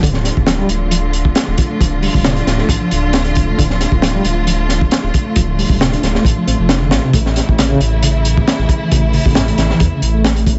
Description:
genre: breakbeat, breaks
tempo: 135 BPM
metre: 4/4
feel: swing 54% on 16ths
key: D minor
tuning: A4 = 439 Hz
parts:
  - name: warm studio string section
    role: sustained chords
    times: 0.0-10.6 s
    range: C#3 to F4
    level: -23 LUFS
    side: equal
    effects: sidechain pumping
  - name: reed electric piano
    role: riff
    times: 0.0-10.6 s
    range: G2 to D4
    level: -22 LUFS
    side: equal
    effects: overdrive, tremolo, delay
  - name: dark detuned saw bass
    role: bass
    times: 0.0-10.6 s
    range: D1 to E2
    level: -19 LUFS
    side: equal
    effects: none
  - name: crunchy breakbeat drum kit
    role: drums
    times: 0.0-10.6 s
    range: hi-hat, kick drum, snare drum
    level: -18 LUFS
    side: equal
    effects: none
room: small room ambience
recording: nothing above 7.9 kHz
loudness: -14 LUFS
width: mono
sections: 0.0-10.6 A section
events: none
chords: 0.0 Dm; 7.1 A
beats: | 0.03 0.47 0.92 1.36 | 1.80 2.25 2.69 3.14 | 3.58 4.03 4.47 4.92 | 5.36 5.80 6.25 6.69 | 7.14 7.58 8.03 8.47 | 8.92 9.36 9.80 10.25

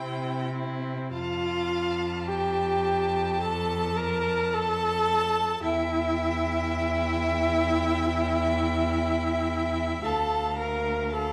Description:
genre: classical, slow romantic movement for string quartet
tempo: 48-56 BPM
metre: 4/4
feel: rubato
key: F major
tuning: A4 = 442 Hz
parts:
  - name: warm violin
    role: melody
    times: 0.0-11.3 s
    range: F5 to A5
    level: -39 LUFS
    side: equal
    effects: none
  - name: warm violin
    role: second line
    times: 0.0-11.3 s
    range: E4 to Bb5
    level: -35 LUFS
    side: equal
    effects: none
  - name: warm viola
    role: accompaniment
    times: 0.0-11.3 s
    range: C4 to Bb4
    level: -29 LUFS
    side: equal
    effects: none
  - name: rich cello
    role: bass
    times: 0.0-11.3 s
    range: D2 to C3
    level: -33 LUFS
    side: equal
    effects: none
room: moderate recital hall reverb, RT60 1.5 s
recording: none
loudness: -27 LUFS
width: mono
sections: 0.0-1.1 A section; 1.1-11.3 B section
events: none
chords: 0.0 C; 1.1 F; 5.6 Em; 10.0 Dm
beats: | 1.13 2.28 3.41 4.54 | 5.64 6.74 7.86 8.97 | 10.05 11.12

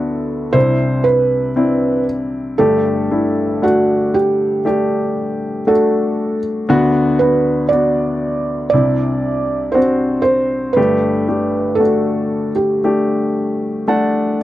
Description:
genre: pop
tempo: 58 BPM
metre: 4/4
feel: straight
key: unclear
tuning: A4 = 440 Hz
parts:
  - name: felt-muted upright piano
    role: melody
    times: 0.0-14.4 s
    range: F#4 to D5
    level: -17 LUFS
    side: right 2 dB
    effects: none
  - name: clear baby grand piano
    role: accompaniment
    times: 0.0-14.4 s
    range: G1 to A5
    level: -16 LUFS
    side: left 2 dB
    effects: none
room: light reverb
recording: dry, close 1970s-style studio recording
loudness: -14 LUFS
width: side -14 dB against mid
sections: 0.0-14.4 A section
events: grand piano fill 13.4-14.4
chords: 0.0 D6; 0.5 Cadd9; 2.6 Gsus2; 6.7 D6; 8.7 Cadd9; 10.8 Gsus2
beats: 0.53 1.56 | 2.58 3.61 4.64 5.66 | 6.68 7.70 8.72 9.74 | 10.77 11.80 12.84 13.89

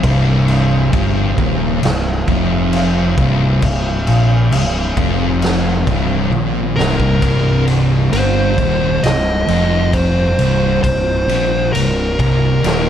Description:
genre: stoner and doom metal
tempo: 67 BPM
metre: 4/4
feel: straight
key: C minor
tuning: A4 = 440 Hz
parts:
  - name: string machine, violas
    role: sustained chords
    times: 0.0-12.9 s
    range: C3 to C4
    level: -28 LUFS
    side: equal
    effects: none
  - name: thick fuzz guitar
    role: riff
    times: 0.0-12.9 s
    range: C2 to Bb2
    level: -18 LUFS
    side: left 7 dB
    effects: distortion
  - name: thick fuzz guitar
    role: riff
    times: 0.0-12.9 s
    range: C2 to Bb2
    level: -19 LUFS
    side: right 7 dB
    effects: distortion
  - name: fuzz fingered electric bass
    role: bass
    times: 0.0-12.9 s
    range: C1 to Bb1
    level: -20 LUFS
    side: equal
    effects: overdrive
  - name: raw garage drum kit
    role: drums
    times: 0.0-12.9 s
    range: crash cymbal, kick drum, ride cymbal, snare drum, toms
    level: -20 LUFS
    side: equal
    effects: none
  - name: fuzz lead guitar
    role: melody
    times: 6.8-12.9 s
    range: Bb4 to Eb5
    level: -19 LUFS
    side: right 1 dB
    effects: distortion
room: moderate large studio reverb, RT60 1.0 s, small room ambience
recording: dark, warm production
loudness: -12 LUFS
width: side -10 dB against mid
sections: 0.0-7.2 A section; 7.2-12.9 B section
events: drum fill 6.3-7.2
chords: 0.0 Cm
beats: | 0.03 0.93 1.82 2.72 | 3.62 4.52 5.42 6.32 | 7.22 8.12 9.03 9.93 | 10.83 11.73 12.64

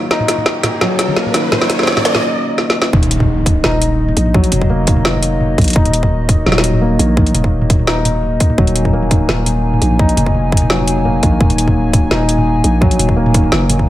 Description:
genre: half-time drum and bass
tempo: 170 BPM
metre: 4/4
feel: swing 53% on 16ths, half-time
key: Eb minor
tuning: A4 = 440 Hz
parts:
  - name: dark analog pad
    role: sustained chords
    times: 0.0-13.9 s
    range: Bb3 to Ab5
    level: -21 LUFS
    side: left 1 dB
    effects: chorus, sidechain pumping
  - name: felt-muted upright piano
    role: arpeggios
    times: 0.0-13.9 s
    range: Eb3 to Eb4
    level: -18 LUFS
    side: left 1 dB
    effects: dub echo
  - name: riser and impact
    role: sound effects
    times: 0.0-4.3 s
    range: none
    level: -22 LUFS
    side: right 1 dB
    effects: none
  - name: drum and bass drum kit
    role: drums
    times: 0.1-13.8 s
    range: hi-hat, snare drum, toms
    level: -17 LUFS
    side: equal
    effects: none
  - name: electronic kick drum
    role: drums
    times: 0.1-13.9 s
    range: none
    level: -14 LUFS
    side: equal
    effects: high-pass filter on kick, high-pass filter on room
  - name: growling 808-style bass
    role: bass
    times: 2.9-13.9 s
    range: Eb1 to Bb1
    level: -16 LUFS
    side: equal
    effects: none
room: light reverb, digital ambience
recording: none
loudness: -11 LUFS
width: side -14 dB against mid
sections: 0.0-2.9 A section; 2.9-13.9 B section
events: build-up 0.0-2.9; drum fill 0.0-2.2, 2.6-2.9; riser 0.0-2.2; filter sweep on analog synth pad 0.0-2.9; filter sweep on felt piano 0.0-2.9; break 2.2-2.9; drop 2.9-13.9; impact 2.9-4.3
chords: 0.0 Eb5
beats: | 0.11 0.46 0.81 1.17 | 1.52 1.87 2.23 2.58 | 2.93 3.29 3.64 3.99 | 4.34 4.70 5.05 5.40 | 5.76 6.11 6.46 6.82 | 7.17 7.52 7.87 8.23 | 8.58 8.93 9.29 9.64 | 9.99 10.34 10.70 11.05 | 11.40 11.76 12.11 12.46 | 12.81 13.17 13.52 13.87

